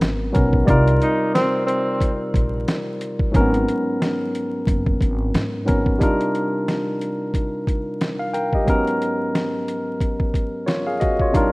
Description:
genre	hip hop, boom-bap hip-hop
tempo	90 BPM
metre	4/4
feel	swing 57% on 16ths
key	unclear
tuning	A4 = 442 Hz
part	barky tine electric piano	accompaniment	0.0-11.5 s	Ab2 to G5	-21 LUFS	equal	high-pass filter, low-pass filter
part	upright bass	bass	0.0-6.0 s	Gb1 to Ab2	-21 LUFS	equal	none
part	boom bap sampler-style drum kit	drums	0.0-11.5 s	hi-hat, kick drum, snare drum	-21 LUFS	equal	none
part	breathy tenor saxophone	melody	1.0-2.2 s	C4 to Eb4	-23 LUFS	equal	high-pass filter, low-pass filter
room	light reverb, small room ambience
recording	rough home demo mix, vinyl crackle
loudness	-18 LUFS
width	side -23 dB against mid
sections	0.0-6.0 A section; 6.0-11.5 B section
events	none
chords	0.0 Abm11; 0.7 Cm11; 3.3 Abm11; 6.0 Cm11; 8.7 Abm11

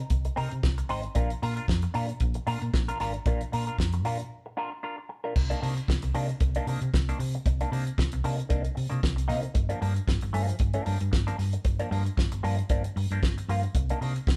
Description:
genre	disco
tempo	114 BPM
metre	4/4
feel	swing 56% on 16ths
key	C minor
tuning	A4 = 440 Hz
part	electric guitar at the edge of break-up	accompaniment	0.0-14.3 s	Eb3 to C5	-36 LUFS	equal	wah
part	hollow-body short-scale fingered electric bass	bass	0.1-14.4 s	G1 to C3	-31 LUFS	equal	none
part	damped 70s drum kit	drums	0.1-14.4 s	crash cymbal, hi-hat, kick drum, snare drum	-31 LUFS	equal	none
room	moderate studio reverb, RT60 0.8 s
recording	band playing live in one room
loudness	-28 LUFS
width	mono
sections	0.0-5.4 A section; 5.4-14.4 B section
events	break 4.3-5.4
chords	0.0 Cm7; 1.2 Bb; 5.4 Cm9; 9.6 Gm7; 13.7 Cm9

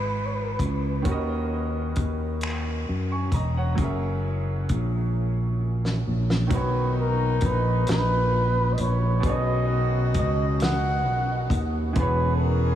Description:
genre	slow six-eight R&B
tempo	44 BPM (dotted quarters)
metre	6/8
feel	straight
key	B major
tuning	A4 = 441 Hz
part	breathy flugelhorn	melody	0.0-0.6, 6.5-12.8 s	A4 to F#5	-28 LUFS	equal	diffuse ambient delay
part	clear baby grand piano	accompaniment	0.0-12.8 s	B2 to C#6	-32 LUFS	right 4 dB	none
part	fretless electric bass	bass	0.0-12.8 s	E1 to F#2	-24 LUFS	equal	wide subtle chorus
part	warm soul drum kit	drums	0.6-12.2 s	finger snaps, hi-hat, kick drum, snare drum	-30 LUFS	equal	none
part	warm horn section	stabs	6.5-12.8 s	A#2 to G#4	-33 LUFS	left 4 dB	none
room	moderate huge ambient reverb, RT60 8.0 s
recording	dreamy mix soaked in reverb, small room ambience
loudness	-22 LUFS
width	side -11 dB against mid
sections	0.0-6.5 A section; 6.5-12.8 B section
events	drum fill 5.1-6.5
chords	0.0 E9; 1.1 D#m7; 3.8 F#7; 6.5 Bmaj7; 9.2 B13; 12.0 E6

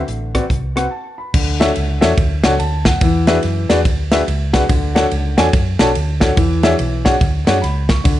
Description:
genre	uptempo gospel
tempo	143 BPM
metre	4/4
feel	swing 63% on 8ths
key	unclear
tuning	A4 = 442 Hz
part	warm baby grand piano	accompaniment	0.0-8.2 s	D3 to C#6	-18 LUFS	left 2 dB	none
part	hollow-body short-scale fingered electric bass	bass	0.1-8.2 s	A1 to F#2	-19 LUFS	equal	none
part	natural country drum kit	drums	0.1-8.2 s	crash cymbal, hi-hat, kick drum, ride cymbal, rim click, snare drum	-17 LUFS	equal	none
room	light reverb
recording	nothing above 10.9 kHz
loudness	-13 LUFS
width	side -13 dB against mid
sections	0.0-1.3 A section; 1.3-8.2 B section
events	break 0.9-1.3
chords	0.0 D13; 1.3 Dmaj9; 3.0 E9; 4.7 Dmaj7; 6.4 E13

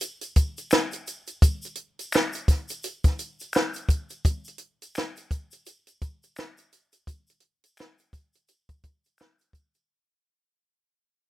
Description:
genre	R&B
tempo	85 BPM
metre	4/4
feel	swing 60% on 16ths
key	none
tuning	none
part	compact cocktail drum kit	drums	0.0-9.9 s	hi-hat, kick drum, snare drum	-21 LUFS	equal	none
part	tube shaker and finger snaps	percussion	0.0-9.9 s	none	-35 LUFS	left 2 dB	none
room	little or no reverb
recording	rough home demo mix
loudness	-24 LUFS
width	side -16 dB against mid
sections	0.0-9.9 A section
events	fade-out 0.0-9.9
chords	none

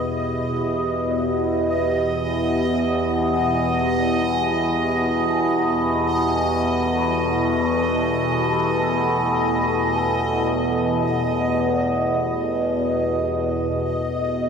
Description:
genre	dark ambient drone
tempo	free time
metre	none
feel	none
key	unclear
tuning	A4 = 440 Hz
part	deep dark ambient pad	sustained chords	0.0-13.3 s	E4 to B4	-26 LUFS	equal	chorus, built-in reverb
part	overtone-sweeping drone	drone	0.0-14.5 s	E2 to B2	-21 LUFS	left 1 dB	chorus, built-in reverb, phaser
part	bubbling stepped-filter texture	texture	0.0-14.5 s	D#5	-26 LUFS	right 2 dB	chorus, built-in reverb
room	wet cathedral reverb, RT60 6.7 s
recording	none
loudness	-19 LUFS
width	side -6 dB against mid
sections	0.0-13.3 A section; 13.3-14.5 B section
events	fade-in on ambient pad 0.0-13.3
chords	0.0 Em; 13.3 E5

